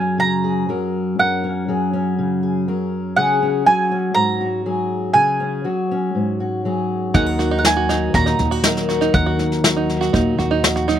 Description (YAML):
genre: indie folk with a building arrangement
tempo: 121 BPM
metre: 4/4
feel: straight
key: F# major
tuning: A4 = 441 Hz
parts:
  - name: mandolin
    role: melody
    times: 0.0-10.6 s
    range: F#5 to A#5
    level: -19 LUFS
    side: right 3 dB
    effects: slapback echo
  - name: fingerpicked steel-string acoustic guitar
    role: accompaniment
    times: 0.0-11.0 s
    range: F#2 to A#4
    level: -20 LUFS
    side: left 2 dB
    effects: none
  - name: open-back banjo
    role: arpeggios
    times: 7.1-11.0 s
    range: D#4 to F#4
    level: -22 LUFS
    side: right 7 dB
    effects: slapback echo
  - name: upright bass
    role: bass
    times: 7.1-11.0 s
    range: D#2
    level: -22 LUFS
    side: equal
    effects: none
  - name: soft brush drum kit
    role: drums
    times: 7.1-10.9 s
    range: kick drum, snare drum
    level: -19 LUFS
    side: left 1 dB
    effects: none
room: little or no reverb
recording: recorded outdoors, with no room sound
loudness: -16 LUFS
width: side -10 dB against mid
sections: 0.0-11.0 A section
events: none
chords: 0.0 F#add9; 3.2 C#sus4; 7.1 D#m